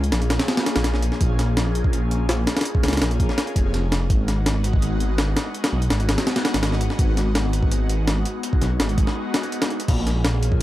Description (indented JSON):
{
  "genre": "drum and bass, jungle",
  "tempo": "166 BPM",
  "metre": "4/4",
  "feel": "straight",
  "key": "Bb phrygian",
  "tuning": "A4 = 440 Hz",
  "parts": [
    { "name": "airy breathy pad", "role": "sustained chords", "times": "0.0-10.6 s", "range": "Ab3 to Ab4", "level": "-28 LUFS", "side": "left 1 dB", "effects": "chorus, phaser, vintage 12-bit sampler grit" },
    { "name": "dark detuned saw bass", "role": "bass", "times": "0.0-10.6 s", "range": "F1 to Db2", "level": "-22 LUFS", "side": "equal", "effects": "none" },
    { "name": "jungle sampler-style drum kit", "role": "drums", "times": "0.0-10.6 s", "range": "crash cymbal, hi-hat, kick drum, snare drum", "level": "-22 LUFS", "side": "equal", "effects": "none" }
  ],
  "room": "little or no reverb",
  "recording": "dry, gritty hardware recording",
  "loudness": "-19 LUFS",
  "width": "side -15 dB against mid",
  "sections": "0.0-9.9 A section",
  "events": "drop 0.0-9.9; break 9.2-9.9",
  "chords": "0.0 Bbm7; 4.1 Abm7; 9.9 Bbm7"
}